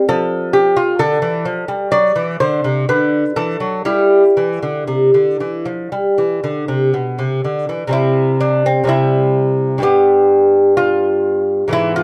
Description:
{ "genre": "classical, baroque-style dance for lute", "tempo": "58-66 BPM", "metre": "4/4", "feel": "rubato", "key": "C major", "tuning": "A4 = 444 Hz", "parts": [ { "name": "lute", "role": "solo", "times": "0.0-12.0 s", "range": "G2 to D5", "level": "-15 LUFS", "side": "equal", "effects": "none" } ], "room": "wet small room reverb, RT60 0.5 s", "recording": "none", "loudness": "-15 LUFS", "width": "mono", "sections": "0.0-7.9 A section; 7.9-12.0 A section", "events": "none", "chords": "0.1 Dm/F (rootless); 1.9 D7; 3.9 C; 5.9 G; 7.9 C; 9.8 G" }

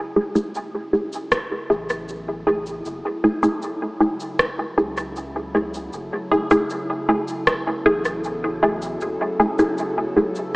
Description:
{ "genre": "ambient dub", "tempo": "78 BPM", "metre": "4/4", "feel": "straight", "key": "F# minor", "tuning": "A4 = 440 Hz", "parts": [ { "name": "warbly tape-like pad", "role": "sustained chords", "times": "0.0-10.6 s", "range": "C#3 to A4", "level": "-30 LUFS", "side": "equal", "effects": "chorus, built-in reverb, phaser" }, { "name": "filtered dub chord stab", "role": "stabs", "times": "0.2-10.4 s", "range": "A3 to G#4", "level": "-20 LUFS", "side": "equal", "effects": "phaser, dub echo" }, { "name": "electronic cabasa and rim click", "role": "drums", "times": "0.4-10.5 s", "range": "none", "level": "-23 LUFS", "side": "equal", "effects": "overdrive, studio reverb, dub echo" }, { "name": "electronic kick drum", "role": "drums", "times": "1.3-7.6 s", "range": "none", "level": "-34 LUFS", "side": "equal", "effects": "studio reverb" }, { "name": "soft dub sub bass", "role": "bass", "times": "1.7-9.2 s", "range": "F#1 to C#2", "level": "-37 LUFS", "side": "equal", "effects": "none" } ], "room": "wet plate reverb, RT60 2.6 s", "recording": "dreamy mix soaked in reverb, AM radio sound", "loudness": "-20 LUFS", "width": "side -24 dB against mid", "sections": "0.0-10.6 A section", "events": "fade-in on ambient pad 0.0-10.6; filter sweep on synth stab 0.0-10.6", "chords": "0.0 F#m9" }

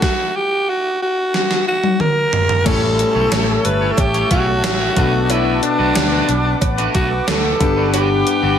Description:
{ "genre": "1980s-style pop", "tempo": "91 BPM", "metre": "4/4", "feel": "straight", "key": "unclear", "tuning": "A4 = 445 Hz", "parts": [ { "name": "breathy alto saxophone", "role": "melody", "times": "0.0-8.6 s", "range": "D4 to B4", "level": "-18 LUFS", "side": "equal", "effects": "none" }, { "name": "clear concert grand piano", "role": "accompaniment", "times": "0.0-8.6 s", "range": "G2 to F#5", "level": "-22 LUFS", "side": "left 7 dB", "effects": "none" }, { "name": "gated 80s digital drum machine", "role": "drums", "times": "0.0-8.4 s", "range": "crash cymbal, hi-hat, kick drum, snare drum, toms", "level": "-19 LUFS", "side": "equal", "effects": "gated reverb, gated reverb snare, overdrive" }, { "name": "warm analog pad", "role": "sustained chords", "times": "3.0-8.6 s", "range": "G4 to E6", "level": "-24 LUFS", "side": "equal", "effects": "chorus" }, { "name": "electric guitar at the edge of break-up", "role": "riff", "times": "2.7-8.6 s", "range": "G3 to C#5", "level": "-25 LUFS", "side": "right 3 dB", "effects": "analog chorus" }, { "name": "fretless electric bass", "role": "bass", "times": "2.7-8.6 s", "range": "G1 to D2", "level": "-21 LUFS", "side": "equal", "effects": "none" }, { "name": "cowbell", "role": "percussion", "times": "2.7-8.1 s", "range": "none", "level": "-30 LUFS", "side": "right 12 dB", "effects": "none" } ], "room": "light reverb", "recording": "none", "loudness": "-14 LUFS", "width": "side -8 dB against mid", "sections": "0.0-2.7 A section; 2.7-8.6 B section", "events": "stop 0.0-2.7; drum fill 1.3-2.7", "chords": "0.0 N.C.; 2.7 A7; 5.0 Bm7; 7.6 Gmaj7" }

